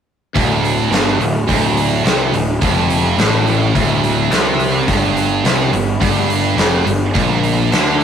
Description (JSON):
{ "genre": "hard rock", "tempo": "106 BPM", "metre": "4/4", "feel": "straight", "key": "unclear", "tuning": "A4 = 440 Hz", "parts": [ { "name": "heavy high-gain guitar", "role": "riff", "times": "0.3-8.0 s", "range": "D2 to D3", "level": "-19 LUFS", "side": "right 7 dB", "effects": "distortion" }, { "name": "overdriven semi-hollow guitar", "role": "riff", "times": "0.3-8.0 s", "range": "D2 to D3", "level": "-21 LUFS", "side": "left 8 dB", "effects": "phaser" }, { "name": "heavy high-gain guitar", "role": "riff", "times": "0.4-8.0 s", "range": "D2 to D3", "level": "-22 LUFS", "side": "right 2 dB", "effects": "distortion" }, { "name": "fuzz picked electric bass", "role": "bass", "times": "0.4-8.0 s", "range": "D1 to D2", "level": "-18 LUFS", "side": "equal", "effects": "overdrive" }, { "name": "big rock drum kit", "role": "drums", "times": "0.4-8.0 s", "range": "hi-hat, kick drum, snare drum", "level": "-18 LUFS", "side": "equal", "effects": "none" } ], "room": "light reverb", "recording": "rough rehearsal-room recording, warm saturation", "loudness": "-13 LUFS", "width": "side -8 dB against mid", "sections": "0.3-8.0 A section", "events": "none", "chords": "0.3 D5; 4.9 G5", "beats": "| 0.35 0.92 1.48 2.05 | 2.62 3.18 3.75 4.32 | 4.88 5.45 6.02 6.58 | 7.15 7.72" }